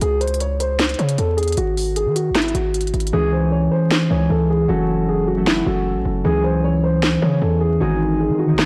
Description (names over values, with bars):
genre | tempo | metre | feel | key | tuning
hip hop, trap | 154 BPM | 4/4 | half-time | C# harmonic minor | A4 = 440 Hz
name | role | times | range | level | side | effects
dark concert grand piano | melody | 0.0-8.7 s | E4 to C#5 | -24 LUFS | equal | low-pass filter
hard-hitting 808-style bass | bass | 0.0-8.7 s | F#1 to D#3 | -25 LUFS | equal | none
trap drum kit | drums | 0.0-8.7 s | hi-hat, rim click, snare drum | -24 LUFS | equal | none
concert harp | accompaniment | 3.1-8.7 s | D#3 to A4 | -21 LUFS | equal | low-pass filter
room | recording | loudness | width
light reverb, studio reverb | blown-out, overdriven recording, vinyl crackle, overdrive | -19 LUFS | mono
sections
0.0-8.7 A section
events
hi-hats muted 3.1-8.7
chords
0.0 C#m; 1.6 G#5; 3.1 C#m; 4.7 F#m; 6.2 C#m; 7.8 G#